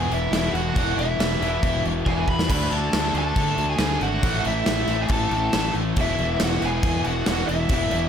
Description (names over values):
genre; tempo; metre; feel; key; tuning
hard rock; 138 BPM; 4/4; straight; E mixolydian; A4 = 440 Hz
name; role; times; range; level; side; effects
lead guitar through a small cranked amp; melody; 0.0-8.1 s; E5 to B5; -27 LUFS; equal; overdrive, digital delay
octave-fuzz lead guitar; second line; 0.0-8.1 s; E4 to B4; -32 LUFS; right 3 dB; distortion
overdriven semi-hollow guitar; riff; 0.0-8.1 s; E2 to D4; -30 LUFS; left 10 dB; spring reverb
overdriven semi-hollow guitar; riff; 0.0-8.1 s; E2 to D4; -31 LUFS; right 11 dB; none
tight distorted guitar; riff; 0.0-8.1 s; E2 to D4; -32 LUFS; left 1 dB; distortion
fuzz fingered electric bass; bass; 0.0-8.1 s; E1 to D3; -27 LUFS; equal; overdrive
gated 80s drum kit; drums; 0.1-8.0 s; crash cymbal, kick drum, snare drum; -25 LUFS; equal; none
room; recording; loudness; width
little or no reverb; none; -20 LUFS; side -8 dB against mid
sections
0.0-8.1 A section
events
drum fill 2.1-2.5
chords
0.0 E5; 2.5 D5; 4.2 A5; 6.0 E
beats
0.33 | 0.77 1.20 1.63 2.07 | 2.50 2.94 3.37 3.80 | 4.24 4.67 5.11 5.54 | 5.97 6.41 6.84 7.27 | 7.71